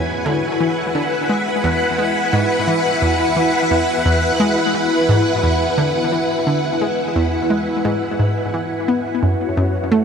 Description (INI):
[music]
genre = ambient, sequencer-driven space music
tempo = 87 BPM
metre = 4/4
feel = straight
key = unclear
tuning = A4 = 440 Hz
[part]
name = string machine, full ensemble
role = sustained chords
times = 0.0-10.0 s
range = E4 to G#5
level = -17 LUFS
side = equal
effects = phaser, ensemble chorus
[part]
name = analog pluck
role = riff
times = 0.0-10.0 s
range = E2 to B3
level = -20 LUFS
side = equal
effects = chorus, ping-pong delay
[part]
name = analog drone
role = bass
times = 9.2-10.0 s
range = none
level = barely audible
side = none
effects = none
[sound]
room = wet huge ambient reverb, RT60 9.1 s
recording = none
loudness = -15 LUFS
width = side -6 dB against mid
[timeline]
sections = 0.0-9.2 A section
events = none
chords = 0.0 E; 9.2 F#m7